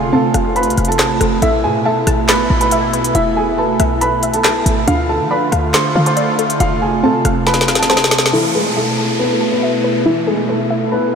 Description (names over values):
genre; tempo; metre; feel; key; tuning
hip hop, drill; 139 BPM; 4/4; half-time; A harmonic minor; A4 = 441 Hz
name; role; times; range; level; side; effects
dark grand piano; melody; 0.0-11.2 s; E3 to C6; -17 LUFS; equal; low-pass filter, diffuse ambient delay
warbly dusty pluck; accompaniment; 0.0-11.2 s; C4 to A6; -21 LUFS; equal; chorus, low-pass filter
sweeping resonant pad; sustained chords; 0.0-11.2 s; B2 to F4; -19 LUFS; right 2 dB; chorus, low-pass filter
short 808-style bass; bass; 0.0-8.3 s; E1 to F3; -20 LUFS; equal; none
drill drum kit; drums; 0.3-8.4 s; handclaps, hi-hat, rim click, snare drum; -20 LUFS; equal; none
downlifter; sound effects; 8.3-11.2 s; none; -24 LUFS; right 1 dB; none
room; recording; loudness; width
wet huge ambient reverb, RT60 8.4 s; dreamy mix soaked in reverb; -12 LUFS; side -6 dB against mid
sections
0.0-8.3 A section; 8.3-11.2 B section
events
drum fill 7.5-8.3; filter sweep 8.3-11.2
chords
0.0 F; 1.4 Asus2; 3.1 Esus4; 4.9 Dm; 6.6 F; 8.3 Asus2